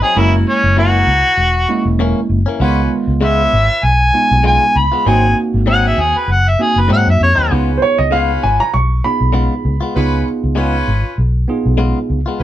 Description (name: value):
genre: blues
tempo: 98 BPM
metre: 4/4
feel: swing 55% on 16ths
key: Db mixolydian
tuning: A4 = 440 Hz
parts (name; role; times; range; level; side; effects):
- mellow harmonica; melody; 0.0-7.5 s; Db4 to Cb6; -13 LUFS; equal; overdrive
- direct-recorded clean electric guitar; stabs; 0.0-12.4 s; Gb2 to F4; -20 LUFS; left 5 dB; none
- tine electric piano; accompaniment; 0.2-12.4 s; Eb3 to Ab4; -19 LUFS; right 4 dB; none
- clear horn section; sustained chords; 0.2-12.4 s; C4 to Cb5; -24 LUFS; equal; none
- vintage muted fingered electric bass; bass; 0.2-12.4 s; Fb1 to Ab2; -15 LUFS; equal; none
- warm upright piano; second line; 7.8-10.2 s; C5 to Db6; -16 LUFS; right 2 dB; none
room: light reverb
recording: band playing live in one room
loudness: -11 LUFS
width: side -12 dB against mid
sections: 0.0-7.5 A section; 7.5-12.4 A section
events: harmonica solo 0.0-7.5; upright piano solo 7.5-12.4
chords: 0.2 Gb7; 2.6 Db7; 5.1 Ab7; 7.5 Db7